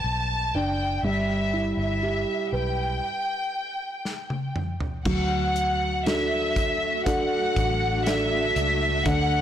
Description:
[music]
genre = pop ballad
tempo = 60 BPM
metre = 4/4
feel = straight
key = D major from 5.1 s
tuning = A4 = 440 Hz
[part]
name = warm studio violin section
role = melody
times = 0.0-9.4 s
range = E5 to A5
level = -26 LUFS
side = left 1 dB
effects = none
[part]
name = dark grand piano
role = accompaniment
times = 0.0-9.4 s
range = D3 to D5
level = -27 LUFS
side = right 2 dB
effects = none
[part]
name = vintage muted fingered electric bass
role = bass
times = 0.0-9.4 s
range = F#1 to D2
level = -29 LUFS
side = equal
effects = none
[part]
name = modern studio drum kit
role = drums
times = 4.1-9.3 s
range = crash cymbal, hi-hat, kick drum, snare drum, toms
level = -30 LUFS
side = equal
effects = none
[part]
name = granular cloud pad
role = sustained chords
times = 6.0-9.4 s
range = D3 to B4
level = -33 LUFS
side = equal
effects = built-in reverb
[sound]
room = light reverb, studio ambience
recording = blown-out, overdriven recording, overdrive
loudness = -23 LUFS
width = side -10 dB against mid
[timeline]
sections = 0.0-5.1 A section; 5.1-9.4 B section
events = stop 3.0-5.1; drum fill 4.0-5.1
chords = 0.0 G; 1.0 Em/G; 3.0 N.C.; 5.1 D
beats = 0.05 | 1.04 2.03 3.03 4.05 | 5.06 6.06 7.06 8.06 | 9.05

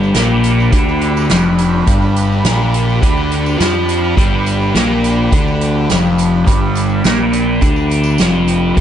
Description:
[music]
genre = psychedelic rock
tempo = 104 BPM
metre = 4/4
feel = straight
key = G mixolydian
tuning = A4 = 440 Hz
[part]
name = rich studio string section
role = sustained chords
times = 0.0-8.8 s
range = D4 to B5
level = -23 LUFS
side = right 3 dB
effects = none
[part]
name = fuzz guitar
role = riff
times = 0.0-8.8 s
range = F2 to F4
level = -14 LUFS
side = left 1 dB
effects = distortion, phaser
[part]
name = fuzz fingered electric bass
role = bass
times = 0.0-8.8 s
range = F1 to F2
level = -19 LUFS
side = equal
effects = overdrive
[part]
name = tambourine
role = percussion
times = 0.0-8.8 s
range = none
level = -34 LUFS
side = right 14 dB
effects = none
[part]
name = soft-mallet drum kit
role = drums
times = 0.1-8.8 s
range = hi-hat, kick drum, snare drum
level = -16 LUFS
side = right 1 dB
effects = none
[sound]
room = light reverb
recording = nothing above 10.6 kHz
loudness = -11 LUFS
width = side -10 dB against mid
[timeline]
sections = 0.0-8.8 A section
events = none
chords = 0.0 G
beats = 0.15 0.72 1.30 | 1.87 2.45 3.02 3.60 | 4.17 4.75 5.32 5.89 | 6.47 7.04 7.62 8.19 | 8.77

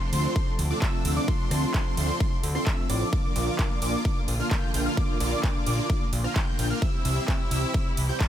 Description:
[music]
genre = EDM, festival progressive house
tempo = 130 BPM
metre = 4/4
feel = straight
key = unclear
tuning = A4 = 439 Hz
[part]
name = muted studio string section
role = sustained chords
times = 0.0-8.3 s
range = C3 to F4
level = -34 LUFS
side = equal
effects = sidechain pumping
[part]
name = wide unison lead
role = arpeggios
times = 0.0-8.3 s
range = C6 to A6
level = -34 LUFS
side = left 1 dB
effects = analog chorus, sidechain pumping, ping-pong delay
[part]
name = supersaw chords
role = riff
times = 0.0-8.3 s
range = Bb3 to A5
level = -31 LUFS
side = right 1 dB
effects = lush chorus, sidechain pumping, ping-pong delay
[part]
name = fat analog bass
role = bass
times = 0.1-8.1 s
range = A1 to D2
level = -27 LUFS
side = equal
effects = sidechain pumping
[part]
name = big-room dance drum kit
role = drums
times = 0.1-8.3 s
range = handclaps, hi-hat, ride cymbal, rim click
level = -34 LUFS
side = right 2 dB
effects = none
[part]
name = electronic kick drum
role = drums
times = 0.4-8.3 s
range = none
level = -26 LUFS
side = equal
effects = none
[sound]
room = digital ambience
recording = none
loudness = -23 LUFS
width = side -11 dB against mid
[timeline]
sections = 0.0-8.3 A section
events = none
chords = 0.0 Dm7; 3.1 Bb; 6.8 C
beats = 0.36 0.82 | 1.28 1.74 2.20 2.67 | 3.13 3.59 4.05 4.51 | 4.97 5.43 5.90 6.36 | 6.82 7.28 7.74 8.20

